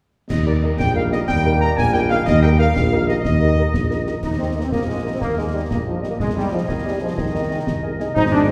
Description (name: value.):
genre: military-style march for wind band.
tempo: 122 BPM (dotted quarters).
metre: 6/8.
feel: straight.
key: Eb major.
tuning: A4 = 439 Hz.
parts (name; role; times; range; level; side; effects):
dark cornet; melody; 0.3-8.5 s; D5 to Bb5; -29 LUFS; equal; none.
warm woodwind section; second line; 0.3-8.5 s; G4 to Bb5; -29 LUFS; equal; none.
warm trombone section; sustained chords; 0.3-8.5 s; Eb3 to Eb4; -28 LUFS; equal; none.
dark tuba; bass; 0.3-8.5 s; Ab1 to Eb2; -23 LUFS; equal; none.
concert snare drum, clash cymbals and concert bass drum; drums; 0.3-8.5 s; none; -28 LUFS; equal; none.
warm French horn section; accompaniment; 0.5-8.5 s; Eb4 to Eb5; -29 LUFS; equal; none.
mellow euphonium; second line; 4.2-8.5 s; Eb3 to Eb4; -31 LUFS; equal; none.
room: wet scoring stage reverb, RT60 1.6 s.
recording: heard from further back in the room.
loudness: -19 LUFS.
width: mono.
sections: 0.3-4.2 A section; 4.2-8.5 B section.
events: none.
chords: 0.3 Eb; 6.2 Ab/C.